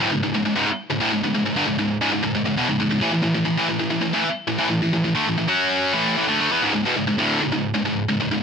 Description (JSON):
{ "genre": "metal", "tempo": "134 BPM", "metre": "4/4", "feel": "straight", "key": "C# phrygian", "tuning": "A4 = 440 Hz", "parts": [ { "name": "heavy high-gain guitar", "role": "solo", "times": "0.0-8.4 s", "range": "C#2 to F#4", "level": "-19 LUFS", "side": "equal", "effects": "distortion" } ], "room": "light reverb", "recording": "none", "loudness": "-19 LUFS", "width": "side -6 dB against mid", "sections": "0.0-6.6 A section; 6.6-8.4 B section", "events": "none", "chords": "0.0 C#5; 3.0 A5; 5.5 F#5; 6.0 A5; 6.6 C#5", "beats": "0.34 0.79 | 1.24 1.69 2.14 2.59 | 3.04 3.48 3.93 4.38 | 4.83 5.28 5.73 6.18 | 6.63 7.08 7.52 7.97 | 8.42" }